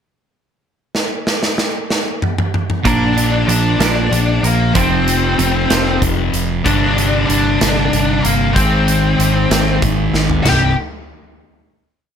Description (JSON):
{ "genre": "quiet-loud alternative rock", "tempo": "63 BPM (dotted quarters)", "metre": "6/8", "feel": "straight", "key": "C minor", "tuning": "A4 = 440 Hz", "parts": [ { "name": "big rock drum kit", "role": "drums", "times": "0.9-10.6 s", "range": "crash cymbal, hi-hat, kick drum, snare drum, toms", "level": "-19 LUFS", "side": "right 1 dB", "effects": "none" }, { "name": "twelve-string electric guitar", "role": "arpeggios", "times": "2.8-6.3 s", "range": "F2 to Bb3", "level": "-22 LUFS", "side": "right 7 dB", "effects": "tremolo" }, { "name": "fuzz guitar", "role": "riff", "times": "2.8-10.7 s", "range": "C2 to Bb3", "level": "-17 LUFS", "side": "left 1 dB", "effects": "distortion" }, { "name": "octave-fuzz lead guitar", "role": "melody", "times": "2.9-10.7 s", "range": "Bb3 to D5", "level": "-17 LUFS", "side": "left 2 dB", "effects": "distortion, slapback echo" }, { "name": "growling fingered electric bass", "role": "bass", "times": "2.9-10.7 s", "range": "C1 to Bb1", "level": "-19 LUFS", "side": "equal", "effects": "overdrive" } ], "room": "light reverb", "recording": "none", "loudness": "-13 LUFS", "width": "side -8 dB against mid", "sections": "0.9-2.8 pickup bar; 2.8-10.5 pre-chorus; 10.5-12.2 final chord", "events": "drum fill 0.9-2.8, 10.1-10.5", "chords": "0.9 N.C.; 2.8 Bb; 4.7 F5; 6.7 Csus2/G; 8.6 Ab; 10.5 C5" }